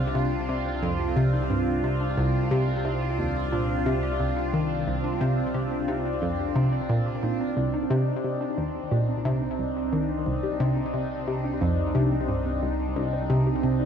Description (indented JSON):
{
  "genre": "ambient, sequencer-driven space music",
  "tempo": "89 BPM",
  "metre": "4/4",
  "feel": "straight",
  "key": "C minor",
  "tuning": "A4 = 440 Hz",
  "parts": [
    { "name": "phased analog pad", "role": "sustained chords", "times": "0.0-13.9 s", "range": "C4 to F4", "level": "-28 LUFS", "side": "equal", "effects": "phaser, chorus, shimmer reverb" },
    { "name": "warbly dusty pluck", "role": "arpeggios", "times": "0.0-13.9 s", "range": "C4 to D5", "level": "-38 LUFS", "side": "moving between left 4 dB and right 4 dB", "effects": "none" },
    { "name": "fat analog bass", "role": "bass", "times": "0.0-13.9 s", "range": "C2", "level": "-33 LUFS", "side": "equal", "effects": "none" },
    { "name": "analog pluck", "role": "riff", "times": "0.2-13.8 s", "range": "C2 to Eb3", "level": "-26 LUFS", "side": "equal", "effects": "chorus, ping-pong delay" }
  ],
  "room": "wet concert hall reverb, RT60 2.4 s",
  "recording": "dark, warm production",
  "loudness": "-23 LUFS",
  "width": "side -8 dB against mid",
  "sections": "0.0-13.9 A section",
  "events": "none",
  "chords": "0.0 Cmadd9"
}